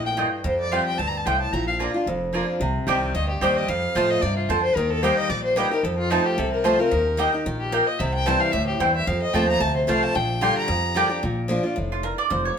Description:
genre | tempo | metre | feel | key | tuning
bluegrass | 222 BPM | 4/4 | swing 54% on 8ths | Bb major | A4 = 440 Hz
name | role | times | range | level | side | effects
clear fiddle | melody | 0.0-11.1 s | Eb4 to C6 | -25 LUFS | left 2 dB | none
picked steel-string acoustic guitar | accompaniment | 0.0-12.6 s | F2 to G4 | -25 LUFS | equal | none
upright bass | bass | 0.0-12.5 s | F1 to A2 | -28 LUFS | equal | none
mandolin | stabs | 0.2-12.6 s | A3 to Bb5 | -25 LUFS | right 2 dB | none
room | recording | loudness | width
moderate stone room reverb, RT60 1.2 s | band playing live in one room | -20 LUFS | side -7 dB against mid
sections
0.0-2.6 A section; 2.6-11.2 B section; 11.2-12.6 C section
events
mandolin solo 11.2-12.6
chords
0.4 Fadd9; 1.5 Bb; 2.6 Cm; 3.7 F; 4.8 Eb; 5.8 F; 6.9 Eb; 8.0 C; 9.1 F; 10.2 Bb6; 11.2 Bb

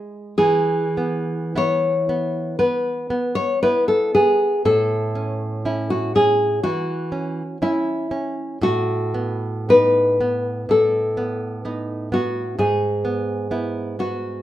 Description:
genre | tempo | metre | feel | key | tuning
romantic duo for nylon-string guitar and classical guitar | 48-66 BPM | 4/4 | rubato | E major | A4 = 437 Hz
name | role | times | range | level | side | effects
nylon-string guitar | accompaniment | 0.0-14.4 s | G#2 to E4 | -25 LUFS | right 2 dB | none
nylon-string guitar | melody | 0.4-14.4 s | E4 to C#5 | -19 LUFS | left 1 dB | none
room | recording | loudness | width
wet studio reverb, RT60 0.6 s | rough home demo mix | -18 LUFS | side -13 dB against mid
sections
0.4-14.4 A section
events
none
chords
0.4 E; 4.7 A; 8.6 B7/A; 12.6 E/G#

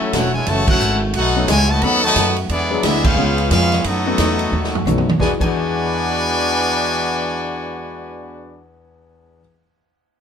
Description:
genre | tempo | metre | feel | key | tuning
jazz, big band swing | 178 BPM | 4/4 | swing 62% on 8ths | E major | A4 = 440 Hz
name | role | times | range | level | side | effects
brilliant trumpet section | melody | 0.0-8.7 s | B3 to B5 | -20 LUFS | left 2 dB | none
clear trombone section | second line | 0.0-8.6 s | C#3 to G#4 | -24 LUFS | right 1 dB | none
warm concert grand piano | accompaniment | 0.0-9.4 s | E2 to A4 | -24 LUFS | left 5 dB | none
clear trombone section | sustained chords | 0.0-8.7 s | C#3 to F#4 | -30 LUFS | left 1 dB | none
upright bass | bass | 0.0-9.4 s | E1 to F#2 | -21 LUFS | right 1 dB | none
swinging big-band drum kit | drums | 0.1-5.5 s | crash cymbal, hi-hat, kick drum, ride cymbal, snare drum, toms | -21 LUFS | right 1 dB | none
room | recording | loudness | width
light reverb | minimal, uncompressed stereo recording | -15 LUFS | side -8 dB against mid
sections
0.0-5.2 A section; 5.2-7.9 B section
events
band accent 0.6, 3.0; drum fill 4.5-5.2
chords
0.0 F#m7; 1.1 B7; 2.5 E7; 3.2 C#7; 3.8 B7; 5.2 E9

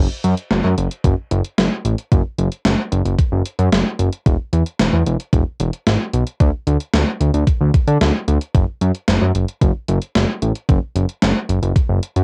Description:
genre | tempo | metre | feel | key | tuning
synth-pop | 112 BPM | 4/4 | straight | F# minor | A4 = 441 Hz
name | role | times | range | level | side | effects
fat analog bass | bass | 0.0-12.2 s | E1 to D3 | -19 LUFS | equal | none
gated 80s digital drum machine | drums | 0.2-12.2 s | hi-hat, kick drum, snare drum | -20 LUFS | equal | gated reverb, gated reverb snare, overdrive, cassette tape
room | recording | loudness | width
light reverb | home recording on cassette | -18 LUFS | mono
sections
0.0-12.2 A section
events
none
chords
none

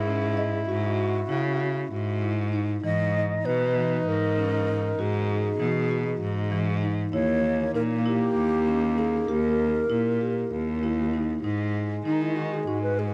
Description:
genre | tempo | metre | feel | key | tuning
contemporary instrumental, chamber music in an uneven meter | 195 BPM (eighths) | 7/8 | straight | G# minor | A4 = 441 Hz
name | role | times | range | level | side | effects
mellow hollow alto flute | melody | 0.0-13.1 s | D#4 to D#5 | -31 LUFS | equal | tape echo
clear French horn | second line | 0.0-13.1 s | G#3 to E4 | -36 LUFS | equal | none
rich cello | bass | 0.0-13.1 s | D#2 to D#3 | -29 LUFS | equal | none
marimba with soft mallets | arpeggios | 0.1-13.1 s | E3 to D#5 | -34 LUFS | equal | none
room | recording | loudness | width
light reverb, small room ambience | echo-heavy mix, cassette tape | -26 LUFS | mono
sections
0.0-11.4 A section; 11.4-13.1 B section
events
none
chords
0.0 F#7sus2/G#; 2.8 Emaj7/G#; 7.1 D#(b9); 11.4 G#5

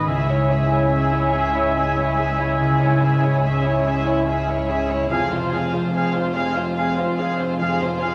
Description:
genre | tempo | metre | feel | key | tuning
cinematic | 48 BPM (dotted quarters) | 6/8 | rubato | unclear | A4 = 437 Hz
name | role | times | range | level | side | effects
warm studio violin section | melody | 0.0-8.1 s | C5 to F5 | -28 LUFS | equal | none
clear oboe | second line | 0.0-8.1 s | E5 to F5 | -30 LUFS | equal | none
flute section | second line | 0.0-8.1 s | Ab5 | -30 LUFS | equal | none
warm symphonic violin section | second line | 0.0-8.1 s | E4 to G#4 | -33 LUFS | equal | none
dark studio viola section | accompaniment | 0.0-8.1 s | C4 to F4 | -31 LUFS | equal | none
felt-muted upright piano | accompaniment | 0.0-8.1 s | C#2 to G#5 | -28 LUFS | equal | none
warm French horn section | sustained chords | 0.0-8.1 s | G#3 to F4 | -34 LUFS | equal | none
concert harp | arpeggios | 0.0-8.1 s | C#3 to G#5 | -30 LUFS | equal | none
dark studio cello section | bass | 0.0-8.1 s | C#2 to F2 | -30 LUFS | equal | none
dark studio double bass section | bass | 0.0-8.1 s | F1 to C#2 | -32 LUFS | equal | none
room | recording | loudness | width
wet scoring stage reverb, RT60 1.5 s | none | -20 LUFS | mono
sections
0.0-8.1 A section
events
none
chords
0.1 C#m; 5.1 Fm

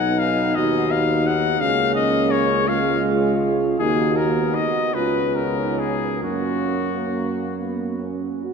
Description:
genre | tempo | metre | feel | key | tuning
classical, hymn-like piece for brass band | 44-59 BPM (dotted quarters) | 6/8 | rubato | F# major | A4 = 440 Hz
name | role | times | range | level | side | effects
warm cornet | melody | 0.0-7.5 s | F#4 to F#5 | -23 LUFS | left 6 dB | none
mellow French horn section | second line | 0.0-8.5 s | B3 to G#4 | -26 LUFS | right 5 dB | none
mellow trombone | accompaniment | 0.0-8.5 s | G#3 to C#4 | -28 LUFS | right 4 dB | none
warm euphonium | accompaniment | 0.0-8.2 s | A#3 to E#4 | -26 LUFS | left 2 dB | none
warm tuba | bass | 0.0-8.5 s | B1 to F#2 | -25 LUFS | right 2 dB | none
room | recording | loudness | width
wet cathedral reverb, RT60 5.1 s | minimal, uncompressed stereo recording | -18 LUFS | side -6 dB against mid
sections
0.0-8.5 A section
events
none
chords
0.0 B; 1.6 C#; 3.8 D#m; 5.0 C#7; 6.2 F#

